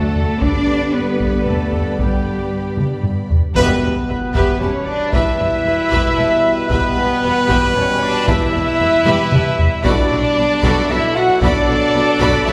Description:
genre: cinematic, epic orchestral film score.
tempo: 114 BPM.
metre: 3/4.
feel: straight.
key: unclear.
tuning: A4 = 440 Hz.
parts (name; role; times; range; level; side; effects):
rich symphonic violin section; melody; 0.0-12.5 s; G4 to F#5; -27 LUFS; equal; none.
small flute group; second line; 0.0-12.5 s; G4 to F#5; -26 LUFS; equal; none.
warm symphonic violin section; second line; 0.0-12.5 s; C#5 to B5; -31 LUFS; equal; none.
warm symphonic viola section; accompaniment; 0.0-12.5 s; F#4 to B4; -28 LUFS; equal; none.
dark trombone section; sustained chords; 0.0-12.5 s; B2 to B3; -28 LUFS; equal; none.
warm French horn section; sustained chords; 0.0-12.5 s; B3 to D5; -22 LUFS; equal; none.
warm symphonic cello section; bass; 0.0-12.5 s; E2 to D4; -26 LUFS; equal; none.
warm symphonic double bass section; bass; 0.0-12.5 s; E1 to G2; -27 LUFS; equal; none.
taiko ensemble; drums; 0.2-12.5 s; none; -22 LUFS; equal; none.
warm trumpet; stabs; 3.6-12.5 s; A4 to B4; -24 LUFS; equal; none.
sub drop; sound effects; 3.8-5.1 s; none; -31 LUFS; equal; none.
room: wet scoring stage reverb, RT60 1.6 s.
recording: heard from further back in the room.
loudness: -16 LUFS.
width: mono.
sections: 0.0-3.6 A section; 3.6-12.5 B section.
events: drum fill 2.8-3.6, 9.1-9.9; band accent 3.6-4.1; impact 3.6-5.1.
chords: 0.4 G; 3.6 Em; 9.9 Bm7.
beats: | 0.42 0.94 1.47 | 1.99 2.52 3.04 | 3.57 4.09 4.62 | 5.14 5.66 6.19 | 6.71 7.23 7.76 | 8.28 8.81 9.33 | 9.85 10.38 10.90 | 11.43 11.95 12.47.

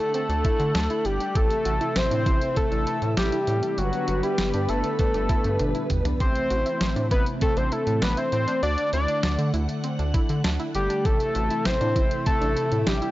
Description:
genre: synth-pop.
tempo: 99 BPM.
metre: 4/4.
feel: straight.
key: A dorian.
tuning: A4 = 440 Hz.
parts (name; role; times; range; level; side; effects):
fat analog lead; melody; 0.0-13.1 s; F#4 to D5; -25 LUFS; left 1 dB; none.
ensemble organ-string; sustained chords; 0.0-13.1 s; C3 to F#5; -30 LUFS; equal; ensemble chorus.
warbly dusty pluck; arpeggios; 0.0-13.1 s; G3 to G4; -34 LUFS; right 2 dB; chorus.
detuned 8-bit digital drum machine; drums; 0.1-13.1 s; hi-hat, kick drum, snare drum, toms; -26 LUFS; equal; none.
rubbery square bass; bass; 0.3-13.0 s; G1 to D3; -26 LUFS; equal; none.
room: little or no reverb.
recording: dry, gritty hardware recording, nothing above 7.6 kHz.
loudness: -21 LUFS.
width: side -16 dB against mid.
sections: 0.0-13.1 A section.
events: drum fill 5.6-6.2.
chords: 0.0 D; 1.4 Am; 3.8 G; 6.2 Am; 8.6 D; 11.1 Am.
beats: 0.14 0.75 | 1.35 1.96 2.57 3.17 | 3.78 4.38 4.99 5.60 | 6.20 6.81 7.42 8.02 | 8.63 9.23 9.84 10.45 | 11.05 11.66 12.26 12.87.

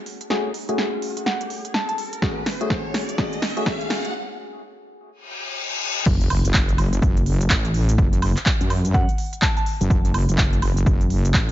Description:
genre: bass house.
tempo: 125 BPM.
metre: 4/4.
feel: swing 61% on 16ths.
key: F# minor.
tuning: A4 = 440 Hz.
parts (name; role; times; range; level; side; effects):
percussive organ stab; stabs; 0.0-4.1 s; A3 to G#4; -28 LUFS; left 2 dB; wide subtle chorus, cassette tape, sidechain pumping, tape echo.
riser, reverse cymbal and sub drop; sound effects; 0.5-8.0 s; none; -30 LUFS; left 1 dB; none.
big-room dance drum kit; drums; 0.1-11.5 s; crash cymbal, handclaps, hi-hat, shaker, snare drum, woodblock; -26 LUFS; right 1 dB; overdrive.
soft synth bell; melody; 1.3-1.9, 8.9-9.6 s; F#5 to A5; -30 LUFS; equal; chorus, tape echo.
electronic kick drum; drums; 2.2-11.5 s; none; -21 LUFS; equal; overdrive.
wobble bass; bass; 6.1-11.5 s; F#1 to F#2; -20 LUFS; equal; chorus, overdrive, sidechain pumping.
room: digital ambience.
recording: high-pass filter, nothing above 7.6 kHz.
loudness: -19 LUFS.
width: side -14 dB against mid.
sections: 0.0-6.1 A section; 6.1-11.5 B section.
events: build-up 0.0-6.1; drum fill 0.0-4.1; filter sweep on synth stab 0.0-6.1; filter sweep 0.0-6.1; riser 0.5-4.1; break 4.1-6.1; reverse cymbal 5.2-6.1; drop 6.1-11.5; impact 6.1-8.0.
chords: 0.0 F#madd9; 6.1 N.C..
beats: | 0.30 0.78 1.26 1.74 | 2.22 2.70 3.18 3.66 | 4.14 4.62 5.10 5.58 | 6.06 6.54 7.02 7.50 | 7.98 8.46 8.94 9.42 | 9.90 10.38 10.86 11.34.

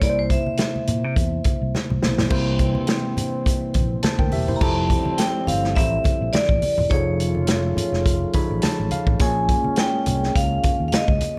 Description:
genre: lush 1970s-style soul.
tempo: 104 BPM.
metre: 4/4.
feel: swing 54% on 16ths.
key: F major.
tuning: A4 = 440 Hz.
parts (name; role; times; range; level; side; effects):
vibraphone with hard mallets; melody; 0.0-11.4 s; C5 to Bb5; -27 LUFS; equal; none.
tine electric piano; accompaniment; 0.0-11.4 s; C3 to B5; -29 LUFS; equal; none.
fingered electric bass; bass; 0.0-11.2 s; E1 to C3; -27 LUFS; equal; none.
vintage drum kit; drums; 0.0-11.4 s; crash cymbal, hi-hat, kick drum, snare drum; -24 LUFS; equal; none.
congas; percussion; 0.5-11.4 s; none; -32 LUFS; equal; none.
warm trombone section; stabs; 2.3-11.2 s; G2 to F4; -33 LUFS; equal; tape echo.
room: small room ambience.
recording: none.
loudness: -21 LUFS.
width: mono.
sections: 0.0-2.3 A section; 2.3-4.6 B section; 4.6-11.4 C section.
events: vibraphone solo 0.0-2.3; drum fill 1.7-2.3; tine electric piano fill 8.1-9.2.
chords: 0.0 C7; 4.6 Fmaj9; 6.9 F7alt; 9.2 Bbm7.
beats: | 0.02 0.59 1.17 1.74 | 2.32 2.89 3.46 4.04 | 4.61 5.18 5.76 6.33 | 6.91 7.48 8.05 8.63 | 9.20 9.78 10.35 10.93.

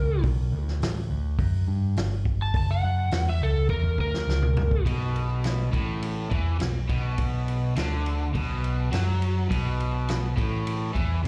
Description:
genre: blues rock power trio and southern rock.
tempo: 104 BPM.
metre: 4/4.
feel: straight.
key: B minor.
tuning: A4 = 441 Hz.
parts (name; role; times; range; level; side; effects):
overdriven slide guitar; melody; 0.0-4.8 s; A4 to A5; -33 LUFS; equal; plate reverb, slapback echo, analog delay.
picked electric bass; bass; 0.0-11.3 s; F#1 to G2; -28 LUFS; equal; none.
vintage drum kit; drums; 0.2-11.3 s; hi-hat, kick drum, ride cymbal, snare drum, toms; -32 LUFS; equal; none.
crunchy overdriven guitar; riff; 4.9-11.3 s; A2 to F#3; -33 LUFS; equal; slapback echo.
room: little or no reverb.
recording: live gig heard through the venue's PA, cassette tape, club reverb.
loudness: -26 LUFS.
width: mono.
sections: 0.0-4.9 A section; 4.9-11.3 B section.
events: electric slide guitar solo 0.0-4.9; drum fill 3.7-4.9.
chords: 0.2 Bm7; 2.5 F#7; 4.9 Bm.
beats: | 0.24 0.81 1.39 1.97 | 2.54 3.12 3.70 4.27 | 4.85 5.43 6.01 6.59 | 7.17 7.75 8.33 8.91 | 9.50 10.08 10.66 11.24.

